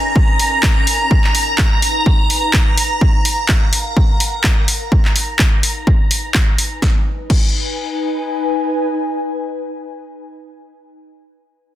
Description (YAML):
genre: piano house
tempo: 126 BPM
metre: 4/4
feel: swing 57% on 16ths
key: G# dorian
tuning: A4 = 440 Hz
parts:
  - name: string machine, violins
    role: sustained chords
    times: 0.0-6.8 s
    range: A#5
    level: -20 LUFS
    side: right 2 dB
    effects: ensemble chorus, sidechain pumping
  - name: ethereal airy pad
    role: texture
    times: 0.0-10.1 s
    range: C#4 to G#5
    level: -24 LUFS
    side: left 2 dB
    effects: ensemble chorus, built-in reverb, sidechain pumping
  - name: electronic kick drum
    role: drums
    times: 0.2-7.5 s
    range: none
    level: -14 LUFS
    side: equal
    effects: none
  - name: punchy analog drum machine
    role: drums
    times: 0.4-7.5 s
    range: crash cymbal, handclaps, hi-hat, snare drum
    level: -19 LUFS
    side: equal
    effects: none
room: light reverb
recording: dense, heavily limited modern master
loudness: -13 LUFS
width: side -13 dB against mid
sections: 0.0-6.8 A section; 6.8-10.6 B section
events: fade-out on ambient pad 0.0-6.8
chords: 0.0 A#m7; 6.8 G#m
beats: 0.16 0.63 | 1.11 1.58 2.06 2.54 | 3.01 3.49 3.97 4.44 | 4.92 5.39 5.87 6.35 | 6.82 7.30 7.78 8.25 | 8.73 9.20 9.68